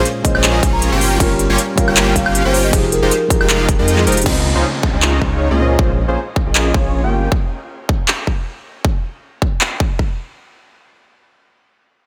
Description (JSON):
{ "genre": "future bass", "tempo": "157 BPM", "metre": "4/4", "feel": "swing 54% on 16ths, half-time", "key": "unclear", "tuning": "A4 = 438 Hz", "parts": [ { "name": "felt-muted upright piano", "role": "accompaniment", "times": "0.0-6.0 s", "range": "Bb2 to Eb5", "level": "-23 LUFS", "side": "equal", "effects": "sidechain pumping, digital delay" }, { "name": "big bright polysynth", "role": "riff", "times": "0.0-7.3 s", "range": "Ab3 to G5", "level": "-22 LUFS", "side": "equal", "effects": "chorus, sidechain pumping" }, { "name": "saturated sub bass", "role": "bass", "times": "0.0-7.3 s", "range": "F1 to F2", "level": "-21 LUFS", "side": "equal", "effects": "sidechain pumping" }, { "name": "big-room dance drum kit", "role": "drums", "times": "0.1-9.7 s", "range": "crash cymbal, handclaps, hi-hat, woodblock", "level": "-21 LUFS", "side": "equal", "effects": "none" }, { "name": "marimba with soft mallets", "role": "melody", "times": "0.2-4.3 s", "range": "Bb4 to Bb5", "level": "-25 LUFS", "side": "equal", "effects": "sidechain pumping, digital delay" }, { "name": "electronic kick drum", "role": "drums", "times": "0.2-10.1 s", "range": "none", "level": "-19 LUFS", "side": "equal", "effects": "none" }, { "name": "downlifter", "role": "sound effects", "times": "4.3-7.3 s", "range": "none", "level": "-31 LUFS", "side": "equal", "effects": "none" } ], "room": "light reverb", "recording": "none", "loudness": "-16 LUFS", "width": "mono", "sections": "0.0-4.3 A section; 4.3-10.4 B section", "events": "drop 0.0-4.3; kick drops out 3.9-4.3; drum fill 4.1; filter sweep on analog polysynth 4.3-7.3", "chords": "0.0 Bbm9; 1.0 Gm7b5; 2.7 Fm9; 4.3 Dbmaj9; 5.6 Bbm9; 7.1 Gm7b5; 8.8 N.C." }